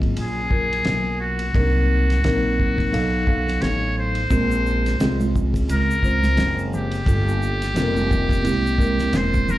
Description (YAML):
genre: hip hop, jazz-hop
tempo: 87 BPM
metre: 4/4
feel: swing 58% on 16ths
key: unclear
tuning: A4 = 440 Hz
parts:
  - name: mellow tine electric piano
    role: accompaniment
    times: 0.0-9.6 s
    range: Gb3 to E#5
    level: -24 LUFS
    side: right 1 dB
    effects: slow stereo tremolo
  - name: upright bass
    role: bass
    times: 0.0-9.6 s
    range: E1 to Db2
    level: -22 LUFS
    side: equal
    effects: none
  - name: cloth-damped thuddy drum kit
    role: drums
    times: 0.0-9.5 s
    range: hi-hat, kick drum, ride cymbal, snare drum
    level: -25 LUFS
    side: equal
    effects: none
  - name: trumpet with metal mute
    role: melody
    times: 0.2-9.6 s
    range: Gb4 to Db5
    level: -24 LUFS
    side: equal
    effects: slapback echo
  - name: tube shaker and congas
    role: percussion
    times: 4.3-9.6 s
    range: none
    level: -32 LUFS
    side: left 2 dB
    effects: none
room: little or no reverb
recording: live gig heard through the venue's PA, club reverb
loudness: -18 LUFS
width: side -15 dB against mid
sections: 0.0-9.6 A section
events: none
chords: 0.0 Gbmaj9; 1.5 Cm7b5; 2.9 B7#11; 4.3 Bbm9; 7.1 Gm7b5; 8.4 C7b13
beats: 0.17 0.86 | 1.55 2.24 2.93 3.62 | 4.31 5.00 5.68 6.38 | 7.07 7.75 8.44 9.13